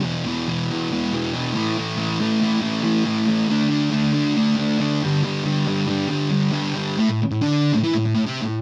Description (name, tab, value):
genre	rock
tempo	138 BPM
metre	4/4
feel	straight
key	unclear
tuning	A4 = 440 Hz
part	thick fuzz guitar	solo	0.0-8.6 s	E2 to E4	-21 LUFS	equal	distortion
room	light reverb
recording	band playing live in one room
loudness	-21 LUFS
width	mono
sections	0.0-7.0 A section; 7.0-8.6 B section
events	none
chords	0.0 E5; 1.6 A5; 3.5 D5; 5.0 G5; 7.0 A5